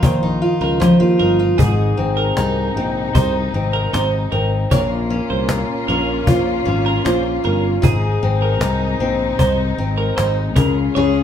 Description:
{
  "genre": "acoustic pop",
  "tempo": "77 BPM",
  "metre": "4/4",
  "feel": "straight",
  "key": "Ab major",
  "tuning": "A4 = 441 Hz",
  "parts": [
    { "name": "picked steel-string acoustic guitar", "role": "accompaniment", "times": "0.0-11.2 s", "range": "Ab2 to Bb4", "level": "-18 LUFS", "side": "left 1 dB", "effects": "none" },
    { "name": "twelve-string electric guitar", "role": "arpeggios", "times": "0.0-11.1 s", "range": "Ab4 to Db5", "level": "-23 LUFS", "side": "right 5 dB", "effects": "none" },
    { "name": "sustaining fretless electric bass", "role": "bass", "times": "0.0-11.2 s", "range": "G1 to Bb2", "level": "-21 LUFS", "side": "left 1 dB", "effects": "none" },
    { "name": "cajon", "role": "drums", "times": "0.0-10.7 s", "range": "none", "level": "-18 LUFS", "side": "left 1 dB", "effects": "none" },
    { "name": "rich studio string section", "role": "sustained chords", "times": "1.6-11.2 s", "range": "C3 to F4", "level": "-27 LUFS", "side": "left 3 dB", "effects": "none" }
  ],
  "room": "wet large studio reverb, RT60 0.9 s",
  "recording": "band playing live in one room",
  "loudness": "-15 LUFS",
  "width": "side -9 dB against mid",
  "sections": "0.0-1.6 A section; 1.6-11.2 B section",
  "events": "none",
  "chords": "0.0 Ebsus2; 1.6 Ab; 4.7 Bbm; 7.8 Ab; 10.6 Db"
}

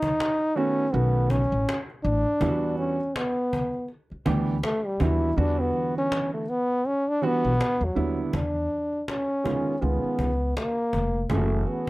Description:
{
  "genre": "hip hop, jazz-hop",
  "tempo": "81 BPM",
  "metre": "4/4",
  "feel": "swing 58% on 16ths",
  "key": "E dorian",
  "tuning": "A4 = 438 Hz",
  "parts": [
    { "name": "mellow trombone", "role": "melody", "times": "0.0-11.9 s", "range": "F#3 to E4", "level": "-26 LUFS", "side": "equal", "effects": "none" },
    { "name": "cajon", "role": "drums", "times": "0.0-11.9 s", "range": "none", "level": "-34 LUFS", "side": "left 1 dB", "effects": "none" },
    { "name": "warm upright piano", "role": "accompaniment", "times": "0.6-11.9 s", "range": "D3 to G#4", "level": "-28 LUFS", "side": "right 3 dB", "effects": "none" },
    { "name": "upright bass", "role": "bass", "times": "0.9-11.6 s", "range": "E#1 to E2", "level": "-26 LUFS", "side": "equal", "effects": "none" }
  ],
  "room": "little or no reverb",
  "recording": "none",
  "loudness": "-23 LUFS",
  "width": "side -19 dB against mid",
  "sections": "0.0-8.3 A section; 8.3-11.9 B section",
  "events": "trombone solo 0.0-8.3; kick muted 5.4-8.3",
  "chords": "0.0 F#m; 0.9 B7; 2.4 Em9; 8.3 E5; 9.8 C#7; 11.3 F#m7"
}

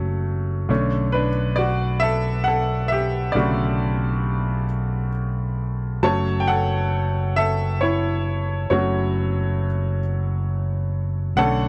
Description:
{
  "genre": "six-eight pop ballad",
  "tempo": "45 BPM (dotted quarters)",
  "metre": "6/8",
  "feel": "straight",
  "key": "unclear",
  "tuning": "A4 = 442 Hz",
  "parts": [
    { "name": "bright upright piano", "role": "accompaniment", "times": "0.0-11.7 s", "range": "C#3 to A5", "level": "-25 LUFS", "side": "equal", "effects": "none" },
    { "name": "fingered electric bass", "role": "bass", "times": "0.0-11.7 s", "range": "F#1 to B1", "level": "-25 LUFS", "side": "equal", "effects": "none" }
  ],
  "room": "little or no reverb",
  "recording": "dry, close 1970s-style studio recording",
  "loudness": "-22 LUFS",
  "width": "mono",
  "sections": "0.0-11.7 A section",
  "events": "upright piano solo 0.0-11.7",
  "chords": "0.0 F#m; 0.7 Bm7; 6.0 F#m"
}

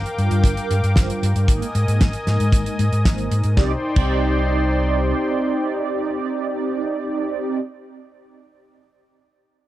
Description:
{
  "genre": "italo disco",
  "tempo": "115 BPM",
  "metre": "4/4",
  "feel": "straight",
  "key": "C minor",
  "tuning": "A4 = 440 Hz",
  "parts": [
    { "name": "warm analog pad", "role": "sustained chords", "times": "0.0-7.2 s", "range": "Eb4 to Eb6", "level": "-26 LUFS", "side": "left 2 dB", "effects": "chorus" },
    { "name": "overdriven fingered electric bass", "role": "bass", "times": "0.0-5.1 s", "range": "G1 to Ab2", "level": "-20 LUFS", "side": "equal", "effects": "none" },
    { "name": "damped 70s drum kit", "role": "drums", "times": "0.1-4.1 s", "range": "crash cymbal, hi-hat, snare drum", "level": "-27 LUFS", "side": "right 1 dB", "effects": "none" },
    { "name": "mellow synth brass", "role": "stabs", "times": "0.2-7.6 s", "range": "G3 to D5", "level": "-24 LUFS", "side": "right 2 dB", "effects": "chorus, tape echo" },
    { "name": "kick drum", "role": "drums", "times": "0.4-4.1 s", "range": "none", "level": "-16 LUFS", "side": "equal", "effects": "none" }
  ],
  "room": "little or no reverb",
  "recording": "dry, close 1970s-style studio recording",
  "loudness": "-18 LUFS",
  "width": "side -14 dB against mid",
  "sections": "0.0-3.6 A section; 3.6-7.7 B section",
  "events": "none",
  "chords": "0.0 Gm7; 1.5 Absus2; 3.6 Cmadd9"
}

